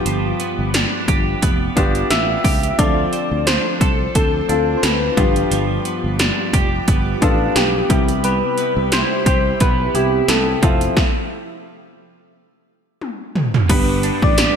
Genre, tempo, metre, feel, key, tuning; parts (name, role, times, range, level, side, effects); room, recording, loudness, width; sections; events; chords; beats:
1980s-style pop; 88 BPM; 4/4; swing 55% on 16ths; G mixolydian; A4 = 441 Hz
warm grand piano; accompaniment; 0.0-14.6 s; G2 to B4; -23 LUFS; left 2 dB; wide subtle chorus
string machine, cellos; sustained chords; 0.0-14.6 s; F4 to D6; -27 LUFS; equal; phaser, ensemble chorus
twelve-string electric guitar; riff; 0.0-14.6 s; F3 to A4; -25 LUFS; right 4 dB; wide subtle chorus
sustaining fretless electric bass; bass; 0.1-14.5 s; F1 to D2; -22 LUFS; equal
80s electronic pad drums; drums; 0.1-14.6 s; crash cymbal, hi-hat, kick drum, snare drum, tambourine, toms; -18 LUFS; equal; gated reverb on snare and toms, overdrive, gated reverb
soft struck synth lead; melody; 2.1-14.6 s; G4 to E5; -22 LUFS; left 1 dB; chorus
marimba with soft mallets; second line; 13.7-14.6 s; B3 to D4; -26 LUFS; right 10 dB
biting overdriven guitar; accompaniment; 13.7-14.6 s; G3 to G4; -27 LUFS; equal; ensemble chorus
moderate plate reverb, RT60 2.3 s; bright 1980s-style digital production; -15 LUFS; side -7 dB against mid
0.0-13.7 A section
stop 11.0-13.7; drum fill 13.0-13.7
0.0 G7; 2.8 Dm7; 5.2 G7; 7.9 Cmaj7; 10.6 Fmaj7; 13.7 G
| 0.06 0.74 1.42 2.10 | 2.79 3.47 4.15 4.83 | 5.51 6.20 6.88 7.56 | 8.24 8.92 9.61 10.29 | 10.97 11.65 12.33 13.01 | 13.70 14.38